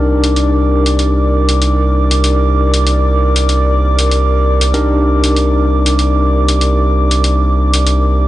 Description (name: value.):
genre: glitch hop.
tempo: 96 BPM.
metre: 4/4.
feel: swing 59% on 16ths.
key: C minor.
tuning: A4 = 439 Hz.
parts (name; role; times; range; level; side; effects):
dark analog pad; sustained chords; 0.0-8.3 s; Bb4 to D6; -18 LUFS; right 1 dB; chorus, vintage 12-bit sampler grit.
tine electric piano; stabs; 0.0-8.3 s; D4 to Bb4; -18 LUFS; left 1 dB; medium tremolo, digital delay.
gritty driven synth bass; bass; 0.0-8.3 s; C2; -12 LUFS; equal; tube saturation.
electronic hi-hat; drums; 0.2-8.0 s; none; -18 LUFS; left 1 dB; none.
room: little or no reverb.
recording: nothing above 10.9 kHz.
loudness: -10 LUFS.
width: side -15 dB against mid.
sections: 0.0-8.3 A section.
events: none.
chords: 0.0 Cm9.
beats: 0.37 0.99 1.62 | 2.24 2.87 3.49 4.12 | 4.74 5.37 5.99 6.62 | 7.24 7.87.